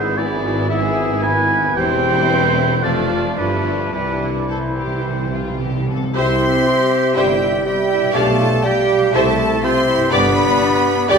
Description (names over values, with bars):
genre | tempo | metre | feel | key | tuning
classical, dramatic, fast romantic movement for symphony orchestra | 105-125 BPM | 4/4 | rubato | C major | A4 = 437 Hz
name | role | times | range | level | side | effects
clear symphonic violin section | melody | 0.0-11.2 s | D4 to F5 | -28 LUFS | left 4 dB | none
bright symphonic violin section | second line | 0.0-11.2 s | G3 to C6 | -25 LUFS | left 2 dB | none
clear oboe | second line | 0.0-11.2 s | G4 to G#5 | -23 LUFS | right 2 dB | none
dark clarinet | second line | 0.0-11.2 s | E4 to B4 | -25 LUFS | left 2 dB | none
small flute group | second line | 0.0-11.2 s | D4 to F5 | -26 LUFS | right 2 dB | none
rich symphonic viola section | accompaniment | 0.0-11.2 s | E3 to D5 | -25 LUFS | equal | none
mellow French horn section | sustained chords | 0.0-11.2 s | G3 to F4 | -25 LUFS | left 3 dB | none
concert harp | arpeggios | 0.0-11.2 s | E2 to E5 | -27 LUFS | left 6 dB | none
clear symphonic double bass section | bass | 0.0-11.2 s | E1 to D2 | -26 LUFS | right 3 dB | none
mellow tuba | bass | 0.0-11.2 s | E1 to D2 | -26 LUFS | right 2 dB | none
rich symphonic cello section | bass | 0.0-11.2 s | E2 to G4 | -26 LUFS | right 2 dB | none
timpani | percussion | 3.9-6.1 s | C3 | -25 LUFS | right 2 dB | none
warm bassoon | accompaniment | 6.2-11.2 s | G3 to C4 | -20 LUFS | right 2 dB | none
room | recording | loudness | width
wet scoring stage reverb, RT60 1.6 s | minimal, uncompressed stereo recording | -14 LUFS | side -6 dB against mid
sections
0.0-6.2 A section; 6.2-11.2 B section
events
timpani fill 3.9-6.2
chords
0.0 E7/G#; 1.8 C/E; 2.8 Dm/F; 3.4 G13; 3.9 C; 8.2 G7/B; 9.1 C; 10.1 G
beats
0.17 0.70 1.23 | 1.76 2.30 2.83 3.37 | 3.93 4.50 5.07 5.63 | 6.17 6.67 7.16 7.66 | 8.15 8.65 9.14 9.64 | 10.12 10.61 11.09